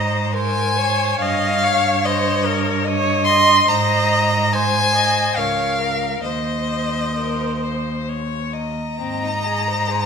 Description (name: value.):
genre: classical, slow romantic movement for string quartet.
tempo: 64-74 BPM.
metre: 3/4.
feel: rubato.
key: Ab major.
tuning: A4 = 439 Hz.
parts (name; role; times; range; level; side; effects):
rich violin; melody; 0.0-10.1 s; C4 to Eb5; -25 LUFS; left 7 dB; none.
rich violin; second line; 0.0-10.1 s; Eb5 to C6; -19 LUFS; left 1 dB; none.
clear viola; accompaniment; 0.0-10.1 s; Bb4 to Eb5; -23 LUFS; right 3 dB; none.
rich cello; bass; 0.0-10.1 s; Db2 to Ab2; -24 LUFS; right 3 dB; none.
room: wet recital hall reverb, RT60 1.6 s.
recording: minimal, uncompressed stereo recording.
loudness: -16 LUFS.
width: side -6 dB against mid.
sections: 0.0-10.1 A section.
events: none.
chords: 0.0 Ab; 1.2 Eb7/G; 3.7 Ab; 5.4 Bbm/Db; 6.2 Cm7/Eb; 9.0 Ab.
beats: 0.34 | 1.21 2.05 2.86 | 3.69 4.54 5.37 | 6.25 7.17 8.09 | 9.01 9.90.